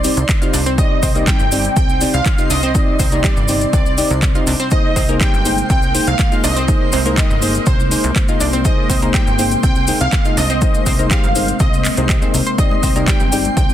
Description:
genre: progressive house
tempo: 122 BPM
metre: 4/4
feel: straight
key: unclear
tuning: A4 = 443 Hz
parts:
  - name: plucky unison lead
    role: melody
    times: 0.0-13.7 s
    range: C5 to G5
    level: -22 LUFS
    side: right 1 dB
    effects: lush chorus, vintage 12-bit sampler grit, sidechain pumping, tape echo
  - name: evolving wavetable pad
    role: sustained chords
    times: 0.0-13.7 s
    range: C3 to Eb4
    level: -24 LUFS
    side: left 1 dB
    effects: chorus, built-in reverb, sidechain pumping
  - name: deep mellow chord stab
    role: stabs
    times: 0.0-13.5 s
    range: Bb3 to Eb5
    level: -22 LUFS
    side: left 2 dB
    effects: chorus, sidechain pumping, tape echo
  - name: plucky analog bass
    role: bass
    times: 0.0-13.7 s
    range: G1 to C2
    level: -20 LUFS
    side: equal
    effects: sidechain pumping
  - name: house drum kit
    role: drums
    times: 0.0-13.7 s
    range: handclaps, hi-hat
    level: -22 LUFS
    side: right 2 dB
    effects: none
  - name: cabasa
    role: percussion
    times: 0.0-13.7 s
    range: none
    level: -27 LUFS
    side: left 4 dB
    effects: none
  - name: backwards swelling texture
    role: texture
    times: 0.0-13.7 s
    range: C5 to C6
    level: -32 LUFS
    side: right 1 dB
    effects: built-in reverb, sidechain pumping
  - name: electronic kick drum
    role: drums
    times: 0.3-13.7 s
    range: none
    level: -16 LUFS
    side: equal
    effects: overdrive
  - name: analog pluck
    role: arpeggios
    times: 0.4-13.6 s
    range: C3 to C6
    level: -25 LUFS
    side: right 1 dB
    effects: chorus, sidechain pumping, tape echo
  - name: bongos, congas and cowbell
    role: percussion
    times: 12.6-13.7 s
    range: none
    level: -29 LUFS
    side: left 2 dB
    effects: none
room: digital ambience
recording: dense, heavily limited modern master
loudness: -13 LUFS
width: side -11 dB against mid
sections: 0.0-13.7 A section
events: none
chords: 0.0 Cmadd9; 4.7 Abadd9; 12.6 Cmadd9

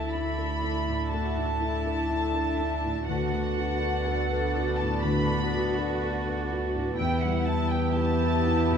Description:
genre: cinematic, emotional film score for orchestra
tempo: 61 BPM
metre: 4/4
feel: rubato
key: unclear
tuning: A4 = 440 Hz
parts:
  - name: warm studio violin section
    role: melody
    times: 0.0-8.8 s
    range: F#5 to B5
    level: -35 LUFS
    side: left 2 dB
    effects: none
  - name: bright flute section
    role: second line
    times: 0.0-8.8 s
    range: F#5 to B5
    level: -36 LUFS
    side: right 1 dB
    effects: none
  - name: clear oboe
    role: second line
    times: 0.0-8.8 s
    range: E5 to A5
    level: -39 LUFS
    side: right 3 dB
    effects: none
  - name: mellow clarinet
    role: second line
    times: 0.0-8.8 s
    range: B4 to E5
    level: -37 LUFS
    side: right 2 dB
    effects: none
  - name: warm studio violin section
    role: second line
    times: 0.0-8.8 s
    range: G4 to E5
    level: -38 LUFS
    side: left 3 dB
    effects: none
  - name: dark studio viola section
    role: accompaniment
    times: 0.0-8.8 s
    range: B3 to F#4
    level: -34 LUFS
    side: right 2 dB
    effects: none
  - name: felt-muted upright piano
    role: accompaniment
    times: 0.0-8.8 s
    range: D2 to B4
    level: -33 LUFS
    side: left 1 dB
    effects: none
  - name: warm French horn section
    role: sustained chords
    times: 0.0-8.8 s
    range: A3 to E4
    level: -35 LUFS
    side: left 5 dB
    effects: none
  - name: concert harp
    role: arpeggios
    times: 0.0-8.8 s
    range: D3 to B4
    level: -36 LUFS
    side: left 10 dB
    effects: none
  - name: warm studio cello section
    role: bass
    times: 0.0-8.8 s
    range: D4 to A4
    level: -38 LUFS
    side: right 1 dB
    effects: none
  - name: warm studio double bass section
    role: bass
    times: 0.0-8.8 s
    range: D2 to E2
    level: -30 LUFS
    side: right 3 dB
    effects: none
room: moderate scoring stage reverb, RT60 1.6 s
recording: dark, warm production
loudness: -25 LUFS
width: side -7 dB against mid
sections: 0.0-8.8 A section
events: none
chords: 0.0 Dsus2; 3.1 Bm7/D; 7.0 Em

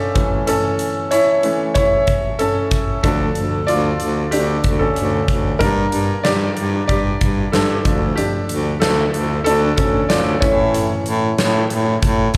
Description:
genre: piano-driven pop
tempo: 94 BPM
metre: 4/4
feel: straight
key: D harmonic minor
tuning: A4 = 443 Hz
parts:
  - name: bright upright piano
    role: accompaniment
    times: 0.0-12.4 s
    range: E3 to D5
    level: -21 LUFS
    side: equal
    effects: slapback echo
  - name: huge arena drum kit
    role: drums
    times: 0.2-12.4 s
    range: hi-hat, kick drum, snare drum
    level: -23 LUFS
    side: equal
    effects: none
  - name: clear baritone saxophone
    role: bass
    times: 3.0-12.4 s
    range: D2 to A2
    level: -22 LUFS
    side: equal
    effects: none
room: light reverb, small room ambience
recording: live gig heard through the venue's PA, club reverb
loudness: -18 LUFS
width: mono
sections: 0.0-12.4 A section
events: upright piano solo 0.0-12.4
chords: 0.2 A; 3.0 Dm; 5.6 Gm; 7.8 Dm; 10.4 A

